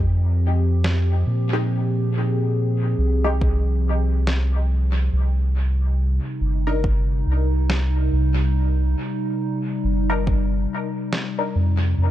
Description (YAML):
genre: ambient dub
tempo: 70 BPM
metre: 4/4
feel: swing 60% on 16ths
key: C minor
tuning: A4 = 441 Hz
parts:
  - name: warbly tape-like pad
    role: sustained chords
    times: 0.0-12.1 s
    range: C3 to Ab4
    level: -26 LUFS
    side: equal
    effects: chorus, built-in reverb
  - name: filtered dub chord stab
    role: stabs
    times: 0.0-11.6 s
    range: Ab3 to Bb4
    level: -30 LUFS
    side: left 3 dB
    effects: phaser, lush chorus, dub echo
  - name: soft dub sub bass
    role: bass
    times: 0.0-12.1 s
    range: G1 to Bb2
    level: -19 LUFS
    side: equal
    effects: none
  - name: electronic snare drum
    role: drums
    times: 0.8-11.3 s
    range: none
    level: -30 LUFS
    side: equal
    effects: dub echo
  - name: electronic kick drum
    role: drums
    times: 3.4-10.5 s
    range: none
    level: -22 LUFS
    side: equal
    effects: overdrive
room: digital ambience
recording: echo-heavy mix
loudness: -19 LUFS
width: side -13 dB against mid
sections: 0.0-12.1 A section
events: none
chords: 0.0 Fmadd9; 5.1 Cm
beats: 0.85 | 1.70 2.56 3.42 4.27 | 5.13 5.99 6.85 7.70 | 8.56 9.42 10.27 11.13 | 11.99